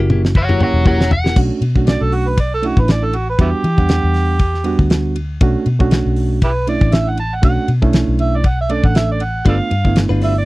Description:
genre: straight-eighth soul blues.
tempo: 119 BPM.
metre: 4/4.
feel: swing 55% on 16ths.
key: B minor.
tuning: A4 = 442 Hz.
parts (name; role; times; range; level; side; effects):
reed electric piano; accompaniment; 0.0-10.4 s; G3 to F#5; -20 LUFS; right 4 dB; none.
direct-recorded clean electric guitar; stabs; 0.0-1.4, 9.4-10.4 s; F#3 to B4; -22 LUFS; left 4 dB; phaser.
vintage muted fingered electric bass; bass; 0.0-10.5 s; E1 to E3; -17 LUFS; left 1 dB; none.
damped 70s drum kit; drums; 0.1-10.3 s; crash cymbal, hi-hat, kick drum, ride cymbal, snare drum, toms; -14 LUFS; equal; none.
crunchy overdriven guitar; melody; 0.4-1.4 s; C#5 to F#5; -18 LUFS; left 1 dB; none.
overdriven harmonica; second line; 1.9-10.5 s; B3 to A5; -20 LUFS; right 3 dB; none.
room: little or no reverb.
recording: dry, close 1970s-style studio recording.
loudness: -13 LUFS.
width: side -19 dB against mid.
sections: 0.0-1.4 A section; 1.4-10.5 A section.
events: drum fill 0.0-1.4; overdriven electric guitar solo 0.0-1.4; harmonica solo 1.4-10.5.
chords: 0.0 F#7b9; 1.4 Bm9; 3.4 Em9; 5.4 Bm9; 9.5 G7.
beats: 0.35 0.86 | 1.37 1.87 2.38 2.88 | 3.39 3.90 4.40 4.91 | 5.41 5.92 6.43 6.93 | 7.44 7.94 8.45 8.96 | 9.46 9.97.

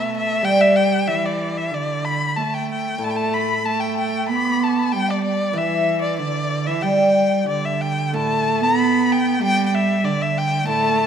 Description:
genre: chinese traditional, Chinese chamber ensemble.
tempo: 94 BPM.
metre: 2/4.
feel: rubato.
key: G gong mode.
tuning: A4 = 441 Hz.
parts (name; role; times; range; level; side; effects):
rich erhu; melody; 0.0-11.1 s; D5 to B5; -22 LUFS; left 2 dB; none.
rich cello; second line; 0.0-11.1 s; D3 to B3; -22 LUFS; right 4 dB; none.
guzheng; accompaniment; 0.0-11.1 s; A2 to G3; -23 LUFS; left 1 dB; none.
mellow hollow dizi; second line; 3.0-7.5 s; D5 to D6; -28 LUFS; left 6 dB; none.
room: wet concert hall reverb, RT60 1.9 s.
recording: none.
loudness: -17 LUFS.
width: side -8 dB against mid.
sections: 0.0-8.1 A section; 8.1-11.1 B section.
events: none.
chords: none.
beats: | 0.45 1.08 | 1.72 2.36 | 3.01 3.66 | 4.30 4.93 | 5.55 6.18 | 6.83 7.48 | 8.14 8.78 | 9.41 10.04 | 10.67.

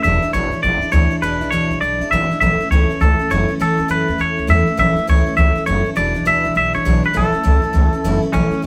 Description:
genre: rockabilly.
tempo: 203 BPM.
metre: 4/4.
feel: swing 64% on 8ths.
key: A major.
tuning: A4 = 439 Hz.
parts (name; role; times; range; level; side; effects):
twangy electric guitar; melody; 0.0-8.6 s; C#4 to E5; -20 LUFS; equal; none.
picked steel-string acoustic guitar; accompaniment; 0.0-8.7 s; E2 to E4; -23 LUFS; equal; none.
upright bass; bass; 0.0-8.7 s; E1 to F#2; -20 LUFS; equal; none.
room: moderate stone room reverb, RT60 1.0 s.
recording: band playing live in one room.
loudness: -16 LUFS.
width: mono.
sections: 0.0-8.3 A section.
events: none.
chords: 0.0 E7; 2.4 A; 6.0 E7; 7.2 A.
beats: | 0.05 0.34 0.64 0.94 | 1.23 1.53 1.82 2.12 | 2.42 2.71 3.01 3.30 | 3.60 3.90 4.19 4.49 | 4.78 5.08 5.38 5.67 | 5.97 6.26 6.56 6.86 | 7.15 7.45 7.75 8.04 | 8.34 8.63.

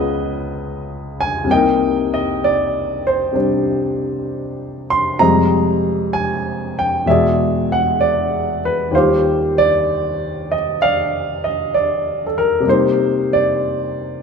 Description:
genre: jazz ballad.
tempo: 64 BPM.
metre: 4/4.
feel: swing 69% on 8ths.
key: unclear.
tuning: A4 = 440 Hz.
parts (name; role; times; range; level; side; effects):
warm baby grand piano; solo; 0.0-14.2 s; C2 to C6; -15 LUFS; equal; none.
room: moderate echo chamber reverb, RT60 2.1 s.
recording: none.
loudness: -15 LUFS.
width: side -6 dB against mid.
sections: 0.0-14.2 A section.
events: none.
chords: 0.0 Db9; 1.5 Cm7; 5.2 Fm9; 7.1 E9; 8.9 Ebmaj9; 12.7 Cm7.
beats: 0.53 | 1.47 2.40 3.33 4.26 | 5.20 6.13 7.06 7.99 | 8.92 9.86 10.79 11.72 | 12.65 13.58.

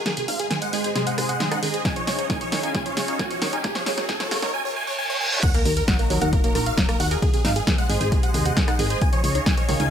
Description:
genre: uplifting trance.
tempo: 134 BPM.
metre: 4/4.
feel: straight.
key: Eb minor.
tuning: A4 = 436 Hz.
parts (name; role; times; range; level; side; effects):
lush unison pad; sustained chords; 0.0-9.9 s; Ab3 to F5; -31 LUFS; left 1 dB; chorus, phaser, sidechain pumping.
riser, reverse cymbal and sub drop; sound effects; 1.6-7.2 s; none; -30 LUFS; equal; none.
big supersaw lead; melody; 0.1-9.9 s; Ab4 to Ab5; -27 LUFS; right 1 dB; phaser, sidechain pumping, ping-pong delay.
wide unison pluck; arpeggios; 0.1-9.9 s; C3 to C5; -30 LUFS; right 4 dB; sidechain pumping, ping-pong delay.
punchy analog drum machine; drums; 0.1-9.9 s; crash cymbal, hi-hat, rim click, snare drum; -27 LUFS; equal; overdrive, small room ambience.
solid FM bass; bass; 0.3-9.9 s; Ab1 to Gb2; -26 LUFS; left 1 dB; sidechain pumping, high-pass filter.
electronic kick drum; drums; 1.9-9.6 s; none; -23 LUFS; equal; small room ambience.
plucky unison lead; second line; 5.4-9.9 s; Ab4 to Ab5; -33 LUFS; equal; sidechain pumping.
room: light reverb.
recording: high-pass filter.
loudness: -20 LUFS.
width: side -8 dB against mid.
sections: 0.0-5.4 A section; 5.4-9.9 B section.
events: build-up 0.0-5.4; drum fill 0.0-4.5; filter sweep on synth pluck 0.0-5.4; riser 1.6-4.5; reverse cymbal 4.5-5.4; drop 5.4-9.9; impact 5.4-7.2.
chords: 0.1 Ab; 1.9 Dbadd9; 3.6 Gb; 5.4 Ebm; 7.2 Ab; 9.0 Dbadd9.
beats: | 0.06 0.51 0.95 1.40 | 1.85 2.30 2.75 3.19 | 3.64 4.09 4.54 4.99 | 5.43 5.88 6.33 6.78 | 7.22 7.67 8.12 8.57 | 9.02 9.46.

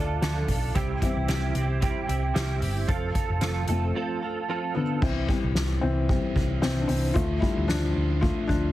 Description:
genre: piano-driven pop.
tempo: 112 BPM.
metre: 4/4.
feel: swing 56% on 16ths.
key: C major.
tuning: A4 = 440 Hz.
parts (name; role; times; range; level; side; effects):
felt-muted upright piano; accompaniment; 0.0-8.7 s; D3 to F5; -29 LUFS; left 3 dB; none.
direct-recorded clean electric guitar; riff; 0.0-5.0 s; C3 to A4; -30 LUFS; right 5 dB; ensemble chorus.
hollow-body short-scale picked electric bass; bass; 0.0-8.7 s; F1 to D2; -27 LUFS; equal; none.
soft-mallet drum kit; drums; 0.2-8.6 s; crash cymbal, hi-hat, kick drum, ride cymbal, snare drum; -28 LUFS; equal; none.
room: studio reverb.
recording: heavily compressed radio sound, multiband compression.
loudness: -23 LUFS.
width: side -14 dB against mid.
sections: 0.0-5.0 A section; 5.0-8.7 B section.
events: felt piano solo 0.0-5.0, 5.0-8.7; break 4.0-5.0.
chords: 0.0 Dm; 0.8 C; 2.9 F; 5.0 C; 7.2 Dm.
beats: 0.22 | 0.75 1.28 1.82 2.35 | 2.89 3.42 3.96 4.49 | 5.02 5.56 6.09 6.62 | 7.16 7.69 8.22.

